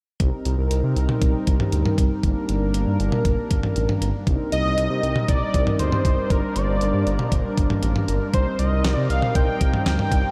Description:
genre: synth-pop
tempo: 118 BPM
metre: 4/4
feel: straight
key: C minor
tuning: A4 = 440 Hz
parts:
  - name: chorused pulse-width pad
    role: sustained chords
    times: 0.2-10.3 s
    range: G3 to Bb4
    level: -28 LUFS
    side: equal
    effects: none
  - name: smooth synth bass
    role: bass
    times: 0.2-10.2 s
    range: G1 to C3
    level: -26 LUFS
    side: equal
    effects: none
  - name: clean 12-bit digital drum machine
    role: drums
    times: 0.2-10.2 s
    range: hi-hat, kick drum, snare drum, toms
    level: -25 LUFS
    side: equal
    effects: none
  - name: unison lead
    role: melody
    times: 4.5-10.3 s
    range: Bb4 to G5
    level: -28 LUFS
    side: equal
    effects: diffuse ambient delay, shimmer reverb
room: wet huge ambient reverb, RT60 8.1 s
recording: dreamy mix soaked in reverb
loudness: -21 LUFS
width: mono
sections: 0.2-4.3 A section; 4.3-10.3 B section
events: none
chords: 0.2 Cm7; 2.2 Gm; 4.3 Cm7; 6.3 Gm; 8.3 Cm7

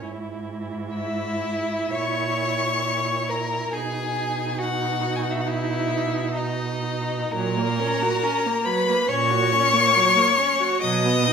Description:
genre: classical, slow romantic movement for string quartet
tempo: 58-71 BPM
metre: 4/4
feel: rubato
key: B major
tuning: A4 = 440 Hz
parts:
  - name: rich violin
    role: melody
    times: 0.0-11.3 s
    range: D#5 to D#6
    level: -24 LUFS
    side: left 6 dB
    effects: none
  - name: rich violin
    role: second line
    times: 0.0-11.3 s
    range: D#4 to D#5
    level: -26 LUFS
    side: equal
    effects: none
  - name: clear viola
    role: accompaniment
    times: 0.0-11.3 s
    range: F#3 to F#4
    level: -28 LUFS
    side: right 5 dB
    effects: none
  - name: warm cello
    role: bass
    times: 0.0-11.3 s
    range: G#2 to B2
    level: -28 LUFS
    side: right 4 dB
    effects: none
room: wet recital hall reverb, RT60 1.3 s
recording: minimal, uncompressed stereo recording, faint mains hum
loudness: -20 LUFS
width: side -6 dB against mid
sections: 0.0-11.3 A section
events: none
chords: 0.0 E/G#; 1.9 A#dim; 3.7 B; 7.3 F#/A#; 10.8 B

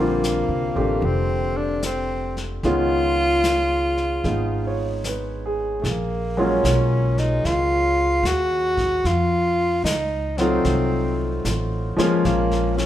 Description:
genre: jazz ballad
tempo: 75 BPM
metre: 4/4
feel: swing 66% on 8ths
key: F# major from 5.8 s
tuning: A4 = 439 Hz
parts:
  - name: breathy tenor saxophone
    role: melody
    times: 0.0-12.9 s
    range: A3 to F#4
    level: -22 LUFS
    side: equal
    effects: none
  - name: clear grand piano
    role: accompaniment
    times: 0.0-12.9 s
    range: D3 to Db5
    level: -23 LUFS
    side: left 1 dB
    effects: none
  - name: upright bass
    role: bass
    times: 0.0-12.9 s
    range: F1 to F2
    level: -25 LUFS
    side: equal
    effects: none
  - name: vintage brush drum kit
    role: drums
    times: 0.2-12.9 s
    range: brushed snare drum, hi-hat, kick drum, snare drum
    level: -30 LUFS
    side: left 2 dB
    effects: none
room: moderate large studio reverb, RT60 1.3 s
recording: band playing live in one room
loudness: -19 LUFS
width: side -12 dB against mid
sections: 0.0-5.8 A section; 5.8-12.9 B section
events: none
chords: 0.0 Bb69; 2.6 Db7; 5.8 F#maj7; 9.0 F7b9; 12.2 A#m7

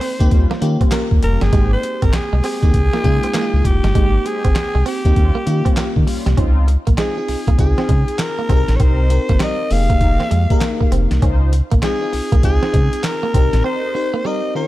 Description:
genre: R&B, new jack swing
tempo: 99 BPM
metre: 4/4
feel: swing 63% on 16ths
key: unclear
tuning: A4 = 435 Hz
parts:
  - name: breathy alto saxophone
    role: melody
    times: 0.0-14.7 s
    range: G4 to F5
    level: -23 LUFS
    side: equal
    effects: none
  - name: FM electric piano with soft pad layer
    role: accompaniment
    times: 0.0-14.7 s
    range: Eb3 to G5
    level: -23 LUFS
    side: left 2 dB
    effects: chorus
  - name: direct-recorded clean electric guitar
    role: riff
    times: 0.0-14.6 s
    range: G3 to Db4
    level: -27 LUFS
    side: right 6 dB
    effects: lush chorus
  - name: boom bap sampler-style drum kit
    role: drums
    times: 0.0-13.6 s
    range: handclaps, hi-hat, kick drum, snare drum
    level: -17 LUFS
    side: equal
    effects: none
  - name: mellow synth brass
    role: stabs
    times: 0.2-13.9 s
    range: G3 to C5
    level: -29 LUFS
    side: equal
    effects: chorus
  - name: round analog bass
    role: bass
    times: 0.2-13.6 s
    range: F1 to Eb3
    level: -16 LUFS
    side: equal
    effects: none
room: little or no reverb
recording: none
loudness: -14 LUFS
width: side -16 dB against mid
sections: 0.0-6.4 A section; 6.4-14.7 B section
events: break 13.6-14.7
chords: 0.3 Eb9; 1.5 Abmaj7; 2.7 Db69; 3.9 Abmaj7; 5.2 Eb9; 6.4 Dbmaj9; 8.5 Cm7; 9.7 Fm11; 11.2 Dbmaj9; 13.3 Cm7

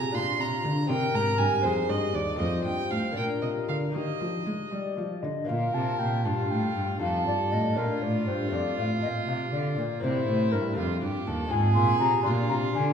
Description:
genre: classical, baroque-style sonata movement with continuo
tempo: 80 BPM (dotted quarters)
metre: 6/8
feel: straight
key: Eb major, Bb major from 5.5 s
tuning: A4 = 439 Hz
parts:
  - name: warm violin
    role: second line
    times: 0.0-12.9 s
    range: E4 to C6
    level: -31 LUFS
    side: right 5 dB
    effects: none
  - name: lute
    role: accompaniment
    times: 0.0-12.9 s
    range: Eb2 to G4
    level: -32 LUFS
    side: left 1 dB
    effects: none
  - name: rich cello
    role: bass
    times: 0.0-12.9 s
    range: Eb2 to Ab3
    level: -29 LUFS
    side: right 1 dB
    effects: none
  - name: baroque flute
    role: melody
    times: 0.2-12.9 s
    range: F4 to C6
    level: -31 LUFS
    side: left 6 dB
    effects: none
room: wet recital hall reverb, RT60 1.6 s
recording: heard from further back in the room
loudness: -24 LUFS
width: side -7 dB against mid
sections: 0.0-5.5 A section; 5.5-12.9 A section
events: none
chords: 0.2 Bb; 0.9 Cm; 1.6 Fm7; 2.4 F; 3.2 Bb; 3.9 Eb; 5.5 Bb5; 7.0 F7; 7.8 Bb; 8.5 F; 10.0 C7; 10.8 F; 11.5 Fm/Ab; 12.3 Bb

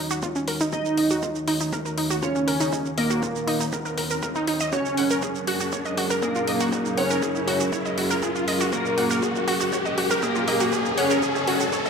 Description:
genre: melodic techno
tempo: 120 BPM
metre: 4/4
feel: straight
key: unclear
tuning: A4 = 440 Hz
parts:
  - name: dark analog pad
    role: sustained chords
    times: 0.0-11.9 s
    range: Eb3 to Db5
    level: -30 LUFS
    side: right 1 dB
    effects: chorus, vintage 12-bit sampler grit, sidechain pumping
  - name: wide unison pluck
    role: arpeggios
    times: 0.0-11.9 s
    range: Db4 to Gb5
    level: -27 LUFS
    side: equal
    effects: sidechain pumping, digital delay
  - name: riser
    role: sound effects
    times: 0.0-11.9 s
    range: none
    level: -30 LUFS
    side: equal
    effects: none
  - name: deep house drum kit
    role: drums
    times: 0.1-11.9 s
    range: hi-hat, shaker, toms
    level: -30 LUFS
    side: right 1 dB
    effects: high-pass filter on toms, high-pass filter on perc, high-pass filter on hats, high-pass filter on room
  - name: electronic kick drum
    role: drums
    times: 0.2-11.8 s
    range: none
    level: -36 LUFS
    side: left 1 dB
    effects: high-pass filter on kick, high-pass filter on room
  - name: fat analog lead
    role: melody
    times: 0.7-11.6 s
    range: Bb3 to Eb4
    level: -26 LUFS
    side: equal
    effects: lush chorus, sidechain pumping, digital delay
  - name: glassy wavetable pluck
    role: second line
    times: 0.7-11.6 s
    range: Bb4 to Eb5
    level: -32 LUFS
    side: left 1 dB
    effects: chorus, sidechain pumping, digital delay
room: moderate digital room reverb, RT60 1.2 s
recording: none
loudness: -21 LUFS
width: side -6 dB against mid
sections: 0.0-11.9 A section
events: build-up 0.0-11.9; drum fill 0.0-11.9; riser 0.0-11.9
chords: 0.0 Ebm7; 4.7 Gbadd9

